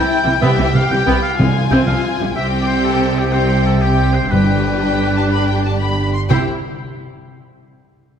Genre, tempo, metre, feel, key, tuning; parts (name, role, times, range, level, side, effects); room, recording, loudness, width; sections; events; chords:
cinematic, heroic adventure film score; 123 BPM (dotted quarters); 12/8; straight; C major; A4 = 440 Hz
rich symphonic violin section; melody; 0.0-6.5 s; G5 to C6; -24 LUFS; left 6 dB
warm oboe; second line; 0.0-6.4 s; G4 to G5; -23 LUFS; equal
warm symphonic violin section; second line; 0.0-6.5 s; E4 to G4; -24 LUFS; left 4 dB
rich symphonic double bass section; bass; 0.2-6.5 s; G1 to C2; -20 LUFS; right 2 dB
clear symphonic viola section; accompaniment; 0.3-6.5 s; E3 to E4; -22 LUFS; equal
warm symphonic cello section; bass; 0.3-6.5 s; G2 to C3; -20 LUFS; right 2 dB
timpani; percussion; 0.4-6.5 s; G2 to C3; -21 LUFS; equal
moderate concert hall reverb, RT60 2.3 s; -13 LUFS; side -8 dB against mid
0.0-6.3 A section; 6.3-8.2 B section
0.4 Em/C; 1.4 Fm/C; 2.4 C5; 4.3 G; 6.3 C